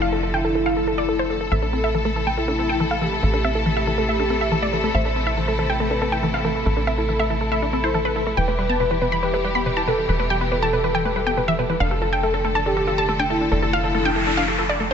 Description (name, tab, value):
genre	trance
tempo	140 BPM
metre	4/4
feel	straight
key	A minor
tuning	A4 = 441 Hz
part	wide unison pluck	melody	0.0-14.9 s	A4 to B5	-24 LUFS	right 1 dB	dub echo
part	warm velvety synth lead	second line	0.0-14.9 s	E4 to C5	-26 LUFS	left 1 dB	chorus, phaser, dub echo
part	warm chamber string section	sustained chords	0.0-14.9 s	B2 to A4	-26 LUFS	equal	none
part	tight sequencer bass	bass	0.0-14.9 s	E1 to A1	-26 LUFS	equal	none
part	tight sequenced synth	arpeggios	1.5-14.9 s	B2 to A4	-28 LUFS	left 2 dB	chorus, dub echo
part	noise sweep	sound effects	13.9-14.9 s	none	-25 LUFS	right 1 dB	none
room	light reverb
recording	nothing above 8.0 kHz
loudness	-19 LUFS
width	side -7 dB against mid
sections	0.0-14.9 A section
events	noise sweep 13.9-14.9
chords	0.0 Dm/F; 1.5 Am; 8.4 Em; 11.8 Dm/F